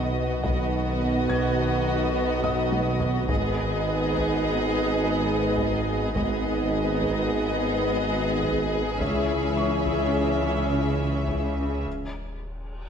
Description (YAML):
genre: cinematic, hybrid orchestral and electronic film score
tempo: 105 BPM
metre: 5/4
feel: straight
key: unclear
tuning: A4 = 444 Hz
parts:
  - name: warm studio violin section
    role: melody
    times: 0.0-11.8 s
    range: D#5 to Fb5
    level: -32 LUFS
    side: left 3 dB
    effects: none
  - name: rich studio violin section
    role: second line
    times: 0.0-11.8 s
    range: F#4 to Ab4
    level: -32 LUFS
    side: left 2 dB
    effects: none
  - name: rich symphonic viola section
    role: accompaniment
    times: 0.0-11.8 s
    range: B3 to Db4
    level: -31 LUFS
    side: equal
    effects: none
  - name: hollow soft pad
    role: sustained chords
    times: 0.0-11.9 s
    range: D#3 to Db5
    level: -31 LUFS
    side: right 2 dB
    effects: chorus
  - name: mellow French horn section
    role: sustained chords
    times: 0.0-11.9 s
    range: Ab3 to Fb4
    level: -32 LUFS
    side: left 4 dB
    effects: none
  - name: mellow tuba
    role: bass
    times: 0.0-11.8 s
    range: Ab1 to Db2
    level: -32 LUFS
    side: right 3 dB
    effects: none
  - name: pure sine sub bass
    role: bass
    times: 0.0-12.9 s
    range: Eb1 to Db2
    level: -34 LUFS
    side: equal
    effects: none
  - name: rich studio cello section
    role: bass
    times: 0.0-11.8 s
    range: Ab2 to Db3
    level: -33 LUFS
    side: right 3 dB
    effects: none
  - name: rich studio double bass section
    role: bass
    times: 0.0-11.8 s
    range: Ab1 to Db2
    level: -32 LUFS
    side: right 1 dB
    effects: none
  - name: felt-muted upright piano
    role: texture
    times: 0.0-11.9 s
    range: D#5 to Ab6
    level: -37 LUFS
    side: left 1 dB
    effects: tape echo
  - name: taiko ensemble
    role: drums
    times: 0.4-11.8 s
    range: none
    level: -34 LUFS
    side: equal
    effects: none
  - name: cymbal swell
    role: sound effects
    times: 12.3-12.9 s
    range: none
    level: -50 LUFS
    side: left 2 dB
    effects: none
room: moderate scoring stage reverb, RT60 1.6 s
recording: none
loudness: -22 LUFS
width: side -7 dB against mid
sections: 0.0-12.9 A section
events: drum fill 2.4-3.3; break 11.9-12.9; cymbal swell 12.3-12.9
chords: 0.0 B; 3.3 Abm; 9.0 Dbm; 11.9 N.C.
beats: | 0.44 1.01 1.58 2.15 2.72 | 3.29 3.87 4.44 5.01 5.58 | 6.15 6.72 7.29 7.87 8.44 | 9.01 9.58 10.15 10.72 11.29 | 11.87 12.44